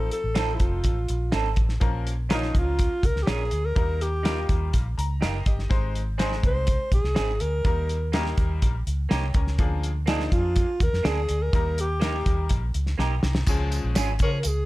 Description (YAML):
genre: uptempo 1960s-style soul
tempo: 124 BPM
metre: 4/4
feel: straight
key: unclear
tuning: A4 = 443 Hz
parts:
  - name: breathy alto saxophone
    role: melody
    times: 0.0-14.7 s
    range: Eb4 to C5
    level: -28 LUFS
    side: equal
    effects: none
  - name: bright upright piano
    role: accompaniment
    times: 0.0-14.1 s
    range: F3 to Bb5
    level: -34 LUFS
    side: left 5 dB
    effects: none
  - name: vintage muted fingered electric bass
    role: bass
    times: 0.0-14.7 s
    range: F1 to Db3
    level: -26 LUFS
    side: equal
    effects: none
  - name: cloth-damped thuddy drum kit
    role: drums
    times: 0.1-14.6 s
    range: crash cymbal, hi-hat, kick drum, snare drum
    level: -25 LUFS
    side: equal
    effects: none
  - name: electric guitar through a small old amp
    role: stabs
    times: 0.3-14.1 s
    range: Bb3 to Bb4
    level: -32 LUFS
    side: right 7 dB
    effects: spring reverb
  - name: tambourine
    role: percussion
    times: 13.5-14.6 s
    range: none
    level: -37 LUFS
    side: right 5 dB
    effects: none
  - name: clear horn section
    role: second line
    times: 14.2-14.4 s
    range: F3 to Ab4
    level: -32 LUFS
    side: left 4 dB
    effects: none
room: small room ambience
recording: none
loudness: -22 LUFS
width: side -18 dB against mid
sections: 0.0-13.5 A section; 13.5-14.7 B section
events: upright piano fill 4.7-5.7, 12.7-13.5; drum fill 13.0-13.5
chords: 0.0 F7; 1.8 Bbm; 3.8 Eb; 5.7 Ab; 7.6 Eb; 9.6 Bb7/D; 11.5 Eb; 13.5 Db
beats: 0.36 0.84 1.33 | 1.82 2.30 2.79 3.28 | 3.76 4.25 4.74 5.22 | 5.71 6.19 6.68 7.16 | 7.65 8.13 8.62 9.10 | 9.59 10.07 10.56 11.05 | 11.53 12.02 12.50 12.99 | 13.48 13.96 14.45